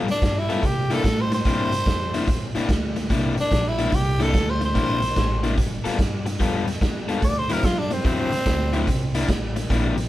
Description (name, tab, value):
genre	electric blues shuffle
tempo	146 BPM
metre	4/4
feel	swing 66% on 8ths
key	unclear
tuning	A4 = 440 Hz
part	crunchy overdriven guitar	riff	0.0-10.0 s	C3 to A4	-26 LUFS	left 4 dB	none
part	upright bass	bass	0.0-10.1 s	G1 to C3	-26 LUFS	right 1 dB	none
part	growling tenor saxophone	melody	0.1-9.3 s	C4 to D5	-25 LUFS	equal	none
part	raw garage drum kit	drums	0.1-10.0 s	hi-hat, kick drum, snare drum	-24 LUFS	equal	none
room	light reverb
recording	band playing live in one room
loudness	-20 LUFS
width	side -15 dB against mid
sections	0.0-10.1 A section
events	none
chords	0.0 G9; 0.6 C9; 5.6 G9; 7.2 D9; 8.9 C9